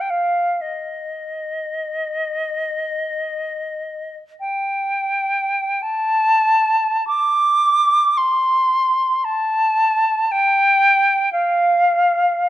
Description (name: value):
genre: classical, free, expressive piece for unaccompanied flute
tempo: free time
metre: none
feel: none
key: Eb major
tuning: A4 = 440 Hz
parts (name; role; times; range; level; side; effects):
- silver concert flute; solo; 0.0-12.5 s; Eb5 to D6; -16 LUFS; equal; none
room: light reverb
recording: close, detailed microphones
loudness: -16 LUFS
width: side -13 dB against mid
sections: 0.0-5.8 A section; 5.8-12.5 B section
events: none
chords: none